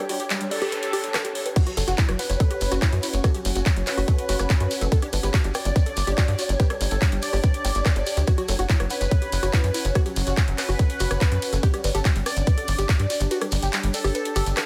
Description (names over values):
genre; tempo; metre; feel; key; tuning
psychedelic trance; 143 BPM; 4/4; straight; unclear; A4 = 440 Hz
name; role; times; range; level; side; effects
unison lead; melody; 0.0-14.7 s; F#3 to D5; -33 LUFS; equal; phaser, sidechain pumping, tape echo
swarming drone; sustained chords; 0.0-14.7 s; C#5; -37 LUFS; equal; built-in reverb, phaser, sidechain pumping
woody wave-folded pluck; riff; 0.0-14.4 s; E4 to G5; -34 LUFS; equal; chorus, sidechain pumping, dub echo
noise sweep; sound effects; 0.3-1.6 s; none; -40 LUFS; equal; none
ethereal airy pad; texture; 0.0-14.7 s; C#4 to G5; -38 LUFS; equal; ensemble chorus, built-in reverb, sidechain pumping
techno drum kit; drums; 0.1-14.7 s; crash cymbal, handclaps, hi-hat, ride cymbal, rim click; -32 LUFS; equal; small room reverb
electronic kick drum; drums; 1.6-13.0 s; none; -22 LUFS; equal; small room reverb
shekere; percussion; 1.6-14.6 s; none; -37 LUFS; equal; none
tight sequencer bass; bass; 1.8-14.5 s; F#1 to G2; -27 LUFS; equal; none
room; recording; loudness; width
light reverb, digital ambience; dense, heavily limited modern master; -23 LUFS; mono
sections
0.0-14.7 A section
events
break 0.0-1.6; noise sweep 0.3-1.6; kick drops out 13.3-14.7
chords
0.0 G5; 1.6 F#5; 4.9 G5; 8.3 F#5; 11.6 G5